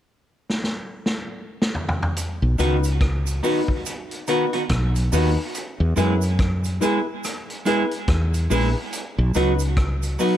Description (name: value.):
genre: roots reggae.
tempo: 71 BPM.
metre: 4/4.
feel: swing 59% on 16ths.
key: B major.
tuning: A4 = 435 Hz.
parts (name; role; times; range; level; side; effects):
vintage drum kit; drums; 0.5-10.4 s; hi-hat, kick drum, rim click, snare drum, toms; -26 LUFS; equal; none.
cabasa; percussion; 2.2-10.4 s; none; -35 LUFS; right 11 dB; none.
woody fretless electric bass; bass; 2.4-10.2 s; A#1 to F#2; -20 LUFS; equal; none.
clean electric guitar; accompaniment; 2.6-10.4 s; D#3 to G#4; -25 LUFS; right 4 dB; tape echo.
dark upright piano; stabs; 2.6-10.4 s; D#4 to B4; -27 LUFS; left 7 dB; none.
room: little or no reverb.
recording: echo-heavy mix.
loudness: -20 LUFS.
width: side -11 dB against mid.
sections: 0.0-2.2 A section; 2.2-10.4 B section.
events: drum fill 0.5-2.2.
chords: 0.0 N.C.; 2.2 B; 5.6 E; 8.9 B.